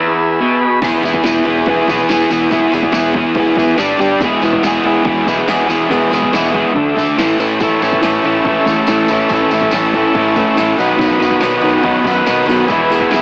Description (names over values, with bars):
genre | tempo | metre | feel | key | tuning
garage rock duo or trio | 142 BPM | 4/4 | straight | E major | A4 = 438 Hz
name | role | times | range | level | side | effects
overdriven combo organ | sustained chords | 0.0-0.8, 7.6-13.2 s | F#4 to B5 | -16 LUFS | equal | none
crunchy overdriven guitar | riff | 0.0-13.2 s | E2 to D5 | -12 LUFS | equal | none
growling picked electric bass | bass | 0.8-13.2 s | E1 to F#2 | -25 LUFS | equal | overdrive, tube saturation
punchy analog drum machine | drums | 0.8-13.2 s | crash cymbal, kick drum, snare drum | -23 LUFS | equal | none
tambourine | percussion | 0.8-13.2 s | none | -32 LUFS | equal | none
room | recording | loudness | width
moderate spring reverb, RT60 1.9 s | home recording on cassette, AM radio sound | -11 LUFS | side -26 dB against mid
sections
0.8-13.2 A section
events
break 0.0-0.8; transistor combo organ fill 0.2-0.8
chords
0.0 E; 3.8 G5; 4.2 E; 6.8 D5; 7.2 A5; 7.6 A; 10.8 B; 12.7 E